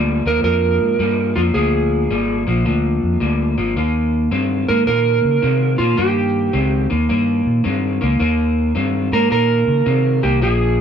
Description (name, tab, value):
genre	blues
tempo	108 BPM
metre	4/4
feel	swing 66% on 8ths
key	unclear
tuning	A4 = 441 Hz
part	electric guitar through a small old amp	riff	0.0-10.8 s	Bb2 to C4	-18 LUFS	left 1 dB	none
part	fingered electric bass	bass	0.0-10.8 s	Ab1 to Db3	-19 LUFS	left 1 dB	none
part	electric slide guitar	melody	0.3-10.8 s	F4 to Bb4	-18 LUFS	right 5 dB	none
room	light reverb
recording	band playing live in one room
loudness	-15 LUFS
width	side -8 dB against mid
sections	0.0-10.8 A section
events	none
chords	0.0 Bb7; 3.8 Eb7